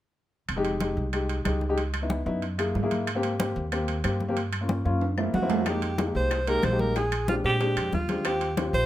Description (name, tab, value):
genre	Afro-Cuban jazz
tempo	186 BPM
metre	4/4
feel	straight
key	F minor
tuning	A4 = 438 Hz
part	upright bass	bass	0.5-8.9 s	F1 to Bb2	-30 LUFS	equal	none
part	claves	percussion	0.5-8.4 s	none	-38 LUFS	left 4 dB	none
part	congas	percussion	0.5-8.9 s	none	-32 LUFS	left 1 dB	none
part	timbales	percussion	0.5-8.7 s	none	-34 LUFS	right 7 dB	none
part	dark upright piano	accompaniment	0.6-8.9 s	Ab3 to Ab4	-29 LUFS	left 2 dB	none
part	clear alto saxophone	melody	5.3-8.9 s	F4 to C5	-28 LUFS	right 1 dB	none
part	bongos	percussion	5.7-8.7 s	none	-37 LUFS	left 5 dB	none
room	moderate studio reverb, RT60 0.8 s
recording	none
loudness	-24 LUFS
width	side -13 dB against mid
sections	0.5-5.7 A section; 5.7-8.9 B section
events	drum fill 5.0-5.7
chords	0.5 Fm7; 1.8 Dbm7; 2.4 Gb9; 3.1 Abmaj7; 4.4 Gm7b5; 5.0 Gb7#11; 5.7 Fm11; 7.0 Bb13; 8.2 Eb69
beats	| 0.49 0.81 1.13 1.46 | 1.78 2.10 2.43 2.75 | 3.08 3.40 3.72 4.05 | 4.37 4.69 5.02 5.34 | 5.66 5.99 6.31 6.63 | 6.96 7.28 7.60 7.93 | 8.25 8.57